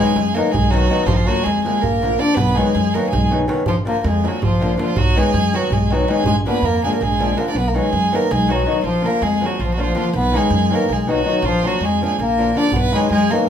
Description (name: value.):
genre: balkan folk, Balkan wedding band.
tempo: 324 BPM (eighths).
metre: 7/8.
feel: straight.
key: unclear.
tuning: A4 = 438 Hz.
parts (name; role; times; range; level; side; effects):
mellow bass clarinet; melody; 0.0-13.5 s; Eb3 to D4; -20 LUFS; left 3 dB; none.
rich violin; second line; 0.0-13.5 s; Eb4 to D5; -22 LUFS; right 5 dB; none.
flamenco guitar; accompaniment; 0.0-13.5 s; D3 to D#4; -23 LUFS; left 2 dB; none.
upright bass; bass; 0.2-13.3 s; Bb1 to F#2; -22 LUFS; right 1 dB; none.
darbuka; percussion; 0.2-7.5, 12.7-13.4 s; none; -24 LUFS; right 1 dB; none.
room: wet large studio reverb, RT60 0.9 s.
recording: band playing live in one room.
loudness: -15 LUFS.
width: side -8 dB against mid.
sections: 0.0-7.5 A section; 7.5-13.5 A section.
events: drum fill 6.6-7.5.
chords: 0.0 B; 1.1 Bb; 2.4 B; 3.7 Bb; 5.0 B; 6.3 Bb; 7.5 B; 8.8 Bb; 10.1 B; 11.4 Bb; 12.7 B.